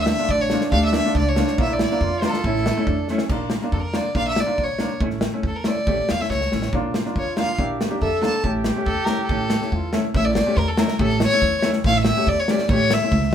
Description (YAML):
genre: klezmer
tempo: 140 BPM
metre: 2/4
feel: straight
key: A phrygian dominant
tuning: A4 = 440 Hz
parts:
  - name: rich violin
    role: melody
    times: 0.0-13.3 s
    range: A4 to A5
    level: -23 LUFS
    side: left 1 dB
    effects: none
  - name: warm trombone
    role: second line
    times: 0.0-3.3, 6.8-10.2 s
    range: C#4 to A4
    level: -26 LUFS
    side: right 2 dB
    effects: none
  - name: bright upright piano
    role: accompaniment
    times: 0.0-13.2 s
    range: A3 to G4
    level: -26 LUFS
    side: left 1 dB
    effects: none
  - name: upright bass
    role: bass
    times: 0.0-13.3 s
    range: A1 to F2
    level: -25 LUFS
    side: right 1 dB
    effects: none
  - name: modern studio drum kit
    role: drums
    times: 0.1-13.3 s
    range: crash cymbal, kick drum, snare drum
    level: -24 LUFS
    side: equal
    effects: none
room: wet studio reverb, RT60 0.6 s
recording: band playing live in one room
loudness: -18 LUFS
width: side -9 dB against mid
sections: 0.0-3.3 A section; 3.3-10.2 B section; 10.2-13.3 A section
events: drum fill 3.1, 6.3-6.7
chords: 0.0 Dm; 1.6 Bb; 2.4 A; 3.3 Bb; 5.0 A; 6.7 Bb; 8.4 A